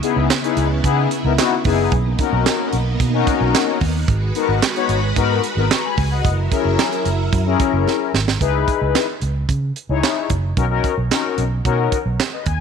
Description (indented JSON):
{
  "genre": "early-eighties boogie funk",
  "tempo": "111 BPM",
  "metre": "4/4",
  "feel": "straight",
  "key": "B major",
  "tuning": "A4 = 438 Hz",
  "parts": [
    { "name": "mellow synth brass", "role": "accompaniment", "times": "0.0-12.6 s", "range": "B3 to C#6", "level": "-20 LUFS", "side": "left 12 dB", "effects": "chorus" },
    { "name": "string machine, violins", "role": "sustained chords", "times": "0.0-8.4 s", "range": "C#3 to B4", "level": "-24 LUFS", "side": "right 1 dB", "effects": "ensemble chorus" },
    { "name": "tight funk drum kit", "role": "drums", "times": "0.0-12.6 s", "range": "handclaps, hi-hat, kick drum, snare drum", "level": "-20 LUFS", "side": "right 5 dB", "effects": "none" },
    { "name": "vintage muted fingered electric bass", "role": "bass", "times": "0.2-12.6 s", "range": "F#1 to C#3", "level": "-20 LUFS", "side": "right 2 dB", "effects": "none" }
  ],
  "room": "light reverb, studio ambience",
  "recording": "1960s-style stereo",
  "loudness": "-16 LUFS",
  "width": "side -6 dB against mid",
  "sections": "0.0-8.4 A section; 8.4-12.6 B section",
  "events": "drum fill 7.9-8.4",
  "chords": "0.0 C#m7; 1.9 Bmaj9; 4.1 G#m7; 6.2 F#7; 8.4 C#m7; 10.6 Bmaj9",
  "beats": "0.30 0.84 1.38 | 1.92 2.46 3.00 3.54 | 4.08 4.62 5.17 5.71 | 6.25 6.79 7.33 7.87 | 8.41 8.95 9.49 10.03 | 10.57 11.11 11.65 12.19"
}